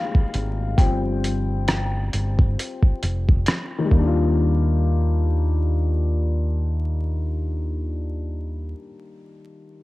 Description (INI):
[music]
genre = lo-fi hip hop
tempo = 67 BPM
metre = 4/4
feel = swing 58% on 16ths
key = Eb major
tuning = A4 = 439 Hz
[part]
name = warm upright piano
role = accompaniment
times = 0.0-9.8 s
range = Eb3 to G5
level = -27 LUFS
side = left 4 dB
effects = low-pass filter, cassette tape
[part]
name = dusty soul sampler-style drum kit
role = drums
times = 0.1-4.2 s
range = hi-hat, kick drum, rim click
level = -19 LUFS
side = equal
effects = overdrive, vintage 12-bit sampler grit
[part]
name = deep dub fingered electric bass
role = bass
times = 0.3-8.7 s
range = F1 to Eb2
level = -22 LUFS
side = equal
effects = tube saturation
[sound]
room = light reverb, digital ambience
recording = home recording on cassette, vinyl crackle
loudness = -20 LUFS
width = side -19 dB against mid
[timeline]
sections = 0.0-4.4 A section; 4.4-7.9 B section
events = upright piano solo 0.0-4.4; filter sweep on upright piano 0.0-4.4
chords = 0.0 Fm11; 0.8 Fsus2; 3.9 Ebmaj7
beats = | 0.78 1.67 2.57 3.46 | 4.36 5.26 6.15 7.05